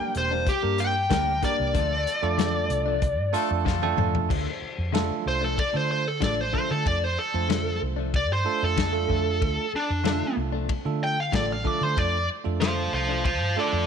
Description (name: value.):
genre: straight-eighth soul blues.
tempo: 94 BPM.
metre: 4/4.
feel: straight.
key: D minor.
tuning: A4 = 439 Hz.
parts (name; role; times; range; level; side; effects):
smooth overdriven lead guitar; melody; 0.0-13.9 s; D4 to G5; -26 LUFS; left 1 dB; none.
bell-like tine electric piano; accompaniment; 0.0-13.9 s; A3 to A5; -31 LUFS; right 13 dB; medium stereo tremolo.
direct-recorded clean electric guitar; stabs; 0.0-13.3 s; G2 to D4; -35 LUFS; left 10 dB; none.
vintage muted fingered electric bass; bass; 0.0-13.9 s; E1 to D3; -28 LUFS; equal; none.
warm soul drum kit; drums; 0.1-13.4 s; crash cymbal, hi-hat, kick drum, ride cymbal, snare drum, toms; -29 LUFS; left 3 dB; none.
brilliant horn section; sustained chords; 0.8-4.0 s; A3 to C5; -36 LUFS; left 6 dB; none.
room: light reverb, small room reverb.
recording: 1960s-style stereo with parts hard left and right.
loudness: -23 LUFS.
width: side -7 dB against mid.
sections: 0.0-4.3 A section; 4.3-13.9 A section.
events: lead electric guitar solo 0.0-4.3, 4.3-13.9; tine electric piano fill 3.0-4.3; drum fill 3.7-4.3.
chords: 0.0 Gm; 1.7 Dm.